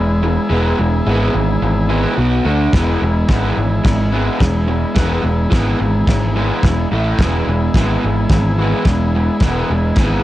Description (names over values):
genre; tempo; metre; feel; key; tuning
garage rock duo or trio; 108 BPM; 4/4; straight; E major; A4 = 439 Hz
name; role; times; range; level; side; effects
combo organ; sustained chords; 0.0-10.2 s; B3 to G#4; -24 LUFS; equal; cassette tape
raw garage guitar; riff; 0.0-10.2 s; A2 to D4; -18 LUFS; equal; overdrive, cassette tape
overdriven picked electric bass; bass; 0.0-10.2 s; E1 to D2; -18 LUFS; equal; none
cloth-damped thuddy drum kit; drums; 2.7-10.1 s; crash cymbal, kick drum, snare drum; -18 LUFS; equal; cassette tape
room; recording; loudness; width
light reverb; home recording on cassette; -13 LUFS; side -15 dB against mid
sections
0.0-10.2 A section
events
none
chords
0.0 E; 2.2 B5; 2.5 D5; 2.7 E; 6.9 A5; 7.2 E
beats
| 0.51 1.07 1.62 2.18 | 2.74 3.30 3.86 4.41 | 4.97 5.53 6.08 6.64 | 7.20 7.75 8.31 8.86 | 9.42 9.97